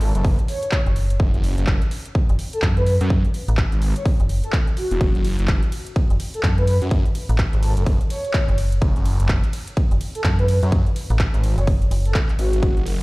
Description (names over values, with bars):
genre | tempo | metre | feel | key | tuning
bass house | 126 BPM | 4/4 | swing 60% on 16ths | F# minor | A4 = 441 Hz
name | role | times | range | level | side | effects
breathy flute-like synth lead | melody | 0.0-12.9 s | F#4 to C#5 | -28 LUFS | equal | ensemble chorus, cassette tape, tape echo
phased detuned saw bass | bass | 0.0-13.0 s | E1 to F#2 | -20 LUFS | equal | phaser, tube saturation, sidechain pumping
big-room dance drum kit | drums | 0.0-13.0 s | handclaps, hi-hat, ride cymbal | -30 LUFS | equal | overdrive
downlifter | sound effects | 0.0-1.2 s | none | -44 LUFS | equal | none
electronic kick drum | drums | 0.2-12.7 s | none | -19 LUFS | equal | overdrive
metallic FM bass | bass | 0.9-12.1 s | F#1 to F#2 | -19 LUFS | equal | tube saturation, sidechain pumping
room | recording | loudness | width
little or no reverb | played on a big sound system in a bare room, stone room reverb | -17 LUFS | side -22 dB against mid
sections
0.0-13.0 A section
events
none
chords
none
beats
0.25 0.72 | 1.20 1.67 2.15 2.63 | 3.10 3.58 4.05 4.53 | 5.01 5.48 5.96 6.44 | 6.91 7.39 7.87 8.34 | 8.82 9.29 9.77 10.25 | 10.72 11.20 11.67 12.15 | 12.63